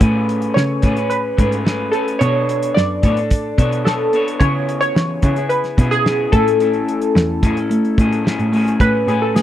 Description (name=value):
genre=indie pop, bedroom pop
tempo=109 BPM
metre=4/4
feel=straight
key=A major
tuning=A4 = 441 Hz
part: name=electric guitar through a small old amp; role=accompaniment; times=0.0-9.4 s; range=C#3 to C#5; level=-22 LUFS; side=left 2 dB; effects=lush chorus, warbly pitch drift
part: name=warm cello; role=bass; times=0.0-9.4 s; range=E2 to A3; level=-19 LUFS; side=equal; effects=none
part: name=cloth-damped thuddy drum kit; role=drums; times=0.0-9.4 s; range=hi-hat, kick drum, snare drum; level=-16 LUFS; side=equal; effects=none
part: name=warm analog keys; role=melody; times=0.5-9.4 s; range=G#4 to D5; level=-19 LUFS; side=equal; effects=lush chorus
room=little or no reverb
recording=dry, close 1970s-style studio recording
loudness=-14 LUFS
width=side -12 dB against mid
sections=0.0-8.8 A section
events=none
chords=0.0 Amaj9; 2.2 Bm9; 4.4 C#m7; 6.3 Amaj7; 8.8 Amaj9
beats=| 0.01 0.56 1.11 1.66 | 2.21 2.76 3.31 3.86 | 4.41 4.96 5.50 6.05 | 6.60 7.15 7.70 8.25 | 8.80 9.35